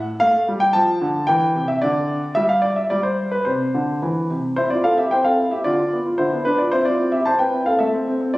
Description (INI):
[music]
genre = classical-period piano sonatina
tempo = 112 BPM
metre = 2/4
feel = straight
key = C major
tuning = A4 = 440 Hz
[part]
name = clear concert grand piano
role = solo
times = 0.0-8.4 s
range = C3 to A5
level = -17 LUFS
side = equal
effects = none
[sound]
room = wet recital hall reverb, RT60 1.8 s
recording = recorded on a phone in the room, studio reverb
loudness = -17 LUFS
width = side -19 dB against mid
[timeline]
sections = 0.0-4.6 A section; 4.6-8.4 B section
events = none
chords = 0.2 F/A; 0.8 Dm; 1.3 C/E; 1.8 N.C.; 3.5 C; 5.7 Dm13; 6.7 C; 7.8 Am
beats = | 0.22 0.75 | 1.29 1.82 | 2.36 2.90 | 3.46 4.02 | 4.58 5.12 | 5.66 6.20 | 6.74 7.27 | 7.81 8.34